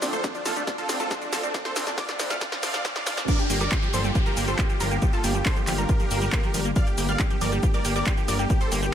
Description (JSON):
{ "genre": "uplifting trance", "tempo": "138 BPM", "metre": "4/4", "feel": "straight", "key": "G minor", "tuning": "A4 = 440 Hz", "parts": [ { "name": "supersaw chords", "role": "melody", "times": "0.0-8.9 s", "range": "D4 to F5", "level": "-31 LUFS", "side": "right 1 dB", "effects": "vintage 12-bit sampler grit, sidechain pumping, ping-pong delay" }, { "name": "wide unison pluck", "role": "second line", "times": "0.0-8.9 s", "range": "D5 to F6", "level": "-34 LUFS", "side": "equal", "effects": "cassette tape, sidechain pumping, ping-pong delay" }, { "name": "lush unison pad", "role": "sustained chords", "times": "0.0-8.9 s", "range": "D3 to G4", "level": "-33 LUFS", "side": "equal", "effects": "chorus, sidechain pumping" }, { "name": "liquid acid bass", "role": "arpeggios", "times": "0.0-8.9 s", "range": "F3 to F4", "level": "-33 LUFS", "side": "right 1 dB", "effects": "phaser, sidechain pumping, ping-pong delay" }, { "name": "plucky analog bass", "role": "bass", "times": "0.0-8.9 s", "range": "D1 to D2", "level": "-29 LUFS", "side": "equal", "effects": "sidechain pumping, high-pass filter" }, { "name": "punchy analog drum machine", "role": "drums", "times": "0.0-8.9 s", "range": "crash cymbal, handclaps, hi-hat, shaker, snare drum", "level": "-30 LUFS", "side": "equal", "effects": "sidechain pumping on hats, sidechain pumping on perc, sidechain pumping on cymbals" }, { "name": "riser, swell and downlifter", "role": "sound effects", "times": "0.0-6.8 s", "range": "none", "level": "-35 LUFS", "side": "right 1 dB", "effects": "none" }, { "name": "electronic kick drum", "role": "drums", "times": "0.2-8.6 s", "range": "none", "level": "-24 LUFS", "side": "equal", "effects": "none" } ], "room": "light reverb, digital ambience", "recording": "high-pass filter", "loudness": "-22 LUFS", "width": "side -9 dB against mid", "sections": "0.0-3.3 A section; 3.3-8.9 B section", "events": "build-up 0.0-3.3; drum fill 0.0-3.3; riser 0.0-3.3; filter sweep on acid bass 0.0-3.3; filter sweep 0.0-3.3; swell 2.4-3.3; drop 3.3-8.9", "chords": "0.0 Dm7; 3.3 Gm7", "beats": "0.24 0.67 1.11 | 1.54 1.98 2.41 2.85 | 3.28 3.72 4.15 4.59 | 5.02 5.46 5.89 6.33 | 6.76 7.20 7.63 8.06 | 8.50 8.93" }